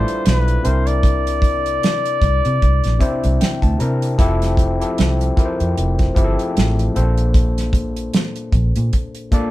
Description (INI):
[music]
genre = R&B, neo-soul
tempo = 76 BPM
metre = 4/4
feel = swing 56% on 16ths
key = F major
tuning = A4 = 438 Hz
[part]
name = warm flugelhorn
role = melody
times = 0.0-3.8 s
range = B4 to D5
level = -21 LUFS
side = left 1 dB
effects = none
[part]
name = overdriven tine electric piano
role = accompaniment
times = 0.0-9.5 s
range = Bb2 to Bb5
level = -22 LUFS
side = left 2 dB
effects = none
[part]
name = vintage muted fingered electric bass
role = bass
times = 0.0-8.9 s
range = F1 to C3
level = -18 LUFS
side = equal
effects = none
[part]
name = damped 70s drum kit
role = drums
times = 0.1-9.5 s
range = hi-hat, kick drum, snare drum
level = -18 LUFS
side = equal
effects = none
[sound]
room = moderate small room reverb, RT60 0.6 s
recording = band playing live in one room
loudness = -15 LUFS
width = side -16 dB against mid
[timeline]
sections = 0.0-9.5 A section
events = tine electric piano fill 2.6-4.2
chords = 0.0 G13; 0.6 C9; 4.2 Fmaj7; 6.9 Bbmaj9